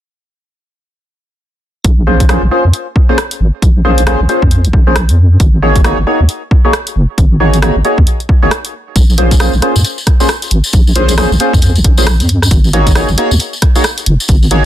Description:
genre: UK garage, two-step garage.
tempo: 135 BPM.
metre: 4/4.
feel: swing 60% on 16ths.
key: Bb minor.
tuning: A4 = 444 Hz.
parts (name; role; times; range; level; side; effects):
deep soft wobble bass; bass; 1.8-14.7 s; Gb1 to F2; -10 LUFS; equal; chorus.
electronic kick drum; drums; 1.8-14.4 s; none; -10 LUFS; equal; none.
punchy analog drum machine; drums; 1.8-14.6 s; hi-hat, rim click; -17 LUFS; equal; soft clipping on snare.
percussive organ stab; stabs; 2.1-14.7 s; Bb3 to Db5; -14 LUFS; equal; analog chorus, ping-pong delay.
tambourine; percussion; 9.0-14.5 s; none; -20 LUFS; left 2 dB; none.
room: light reverb.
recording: dense, heavily limited modern master.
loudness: -8 LUFS.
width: side -12 dB against mid.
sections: 1.8-14.7 A section.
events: filter sweep on synth stab 1.8-14.7.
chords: 1.8 Bbm9; 5.4 Ab9sus4; 9.0 Bbm9; 12.5 Ab9sus4.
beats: | 1.85 2.29 2.73 3.18 | 3.62 4.07 4.51 4.96 | 5.40 5.85 6.29 6.74 | 7.18 7.62 8.07 8.51 | 8.96 9.40 9.85 10.29 | 10.73 11.18 11.62 12.07 | 12.51 12.96 13.40 13.85 | 14.29.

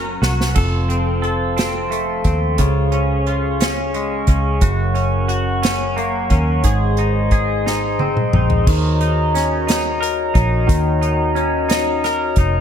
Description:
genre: six-eight pop ballad.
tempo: 59 BPM (dotted quarters).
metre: 6/8.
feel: straight.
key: unclear.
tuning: A4 = 437 Hz.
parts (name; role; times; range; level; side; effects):
direct-recorded clean electric guitar; accompaniment; 0.0-12.6 s; F2 to Bb4; -21 LUFS; equal; double-tracked left and right.
vintage muted fingered electric bass; bass; 0.0-12.6 s; F1 to Eb2; -20 LUFS; equal; none.
unplugged drum kit; drums; 0.2-12.5 s; crash cymbal, hi-hat, kick drum, snare drum, toms; -19 LUFS; equal; none.
glass harmonica; sustained chords; 0.5-12.6 s; Gb4 to Db6; -22 LUFS; left 2 dB; none.
room: moderate plate reverb, RT60 1.3 s, small room ambience.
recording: dreamy mix soaked in reverb.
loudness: -15 LUFS.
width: side -8 dB against mid.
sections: 0.6-8.7 A section; 8.7-12.6 B section.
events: drum fill 0.0-0.6, 7.7-8.7.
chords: 0.0 Gb; 0.6 F; 2.6 Db; 4.6 Gb; 6.6 Ab; 8.7 Ebm7.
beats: | 0.56 1.57 | 2.59 3.60 | 4.62 5.63 | 6.64 7.65 | 8.67 9.68 | 10.69 11.70.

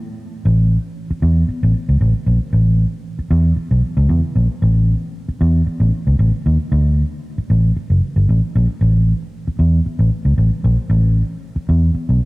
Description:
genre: funk.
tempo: 115 BPM.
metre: 4/4.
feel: straight.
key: unclear.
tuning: A4 = 441 Hz.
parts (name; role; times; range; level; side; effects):
vintage muted fingered electric bass; solo; 0.5-12.2 s; F#1 to E2; -14 LUFS; equal; cassette tape.
room: light reverb, digital ambience.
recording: home recording on cassette.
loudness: -14 LUFS.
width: side -23 dB against mid.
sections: 0.5-12.3 A section.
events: break 0.0-0.5.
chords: none.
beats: | 0.45 0.97 1.49 2.01 | 2.53 3.05 3.58 4.10 | 4.62 5.14 5.66 6.19 | 6.71 7.23 7.76 8.28 | 8.80 9.33 9.85 10.38 | 10.90 11.43 11.95.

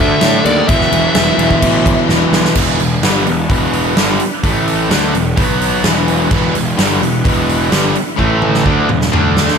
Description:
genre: hard rock.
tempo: 128 BPM.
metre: 4/4.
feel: straight.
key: E minor.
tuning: A4 = 440 Hz.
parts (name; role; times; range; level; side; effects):
biting lead guitar; melody; 0.0-2.1 s; D5 to E5; -16 LUFS; left 1 dB; overdrive, analog delay.
overdriven tonewheel organ; sustained chords; 0.0-9.6 s; A3 to F#5; -26 LUFS; equal; none.
cranked stack guitar; riff; 0.0-9.6 s; E2 to D4; -18 LUFS; left 11 dB; overdrive.
crunchy overdriven guitar; riff; 0.0-2.6 s; E2 to D4; -19 LUFS; equal; none.
tight distorted guitar; riff; 0.0-9.6 s; E2 to D4; -18 LUFS; right 13 dB; distortion.
fuzz picked electric bass; bass; 0.0-9.6 s; E1 to A2; -18 LUFS; equal; overdrive.
huge arena drum kit; drums; 0.2-9.6 s; crash cymbal, hi-hat, kick drum, snare drum, toms; -16 LUFS; equal; none.
room: light reverb, small room ambience.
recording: none.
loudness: -11 LUFS.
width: side -6 dB against mid.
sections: 0.0-2.6 A section; 2.6-9.6 B section.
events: drum fill 2.1-2.6, 8.2-9.6.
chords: 0.0 D5; 0.7 E5; 2.6 Em; 4.4 A5; 4.9 E5; 5.4 B5; 5.8 Em; 8.2 A5; 8.7 E5; 9.1 D5.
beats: 0.23 | 0.70 1.16 1.63 2.10 | 2.57 3.03 3.50 3.97 | 4.44 4.91 5.37 5.84 | 6.31 6.78 7.25 7.72 | 8.19 8.65 9.12.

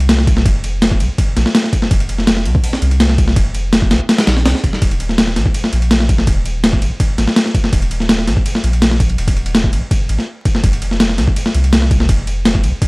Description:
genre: drum and bass, jungle.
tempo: 165 BPM.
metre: 4/4.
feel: straight.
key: unclear.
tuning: A4 = 442 Hz.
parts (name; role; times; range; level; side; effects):
soft dub sub bass; bass; 0.0-12.7 s; Eb1 to C2; -16 LUFS; equal; none.
breakbeat sampler-style drum kit; drums; 0.0-12.9 s; kick drum, ride cymbal, snare drum; -13 LUFS; equal; overdrive.
room: little or no reverb.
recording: dry, gritty hardware recording, transformer saturation, vinyl crackle.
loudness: -12 LUFS.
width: side -27 dB against mid.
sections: 0.0-12.9 A section.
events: none.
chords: none.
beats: 0.09 | 0.46 0.82 1.18 1.55 | 1.91 2.27 2.64 3.00 | 3.36 3.73 4.09 4.46 | 4.82 5.18 5.55 5.91 | 6.27 6.64 7.00 7.36 | 7.73 8.09 8.46 8.82 | 9.18 9.55 9.91 10.27 | 10.64 11.00 11.36 11.73 | 12.09 12.46 12.82.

